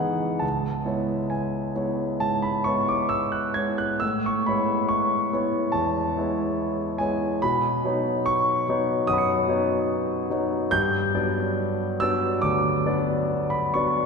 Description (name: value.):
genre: classical, impressionist solo piano.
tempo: 65-74 BPM.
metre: 4/4.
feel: rubato.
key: unclear.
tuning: A4 = 439 Hz.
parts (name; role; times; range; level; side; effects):
clear concert grand piano; solo; 0.0-14.1 s; C#2 to C#7; -22 LUFS; equal; none.
room: wet church reverb, RT60 3.0 s.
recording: minimal, uncompressed stereo recording.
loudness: -22 LUFS.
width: side -5 dB against mid.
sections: 0.0-14.1 A section.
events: none.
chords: 0.4 C#m7; 4.0 Amaj9; 7.4 Badd9; 10.7 Gmaj7.